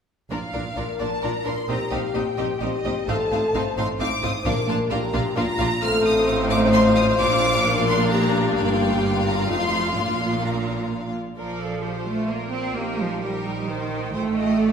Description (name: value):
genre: quick classical-period movement for symphony orchestra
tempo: 130 BPM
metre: 3/4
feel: straight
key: Bb major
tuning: A4 = 438 Hz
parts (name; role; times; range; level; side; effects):
- warm studio violin section; melody; 0.3-14.7 s; D5 to F6; -28 LUFS; left 1 dB; none
- rich studio violin section; second line; 0.3-14.7 s; F4 to F5; -30 LUFS; left 3 dB; none
- rich studio viola section; accompaniment; 0.3-14.7 s; A3 to Bb4; -28 LUFS; right 1 dB; none
- clear studio cello section; bass; 0.3-14.7 s; F2 to C4; -26 LUFS; right 2 dB; none
- rich studio double bass section; bass; 0.3-14.7 s; F1 to Bb1; -29 LUFS; right 4 dB; none
- mellow French horn section; sustained chords; 0.8-14.7 s; Eb4 to Eb5; -26 LUFS; left 4 dB; none
- timpani; percussion; 4.5-5.1 s; Bb2; -32 LUFS; right 1 dB; none
room: wet recital hall reverb, RT60 1.5 s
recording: recorded in a church or concert hall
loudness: -20 LUFS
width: side -7 dB against mid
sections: 0.3-11.4 A section; 11.4-14.7 A section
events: none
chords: 0.3 Bb; 1.7 Cm7/Bb; 3.1 F7/A; 4.5 Bb; 5.8 F7/A; 7.2 Bb; 8.6 Gm7; 9.5 F7; 10.0 Bb; 12.8 Cm7/Bb; 14.1 F7/A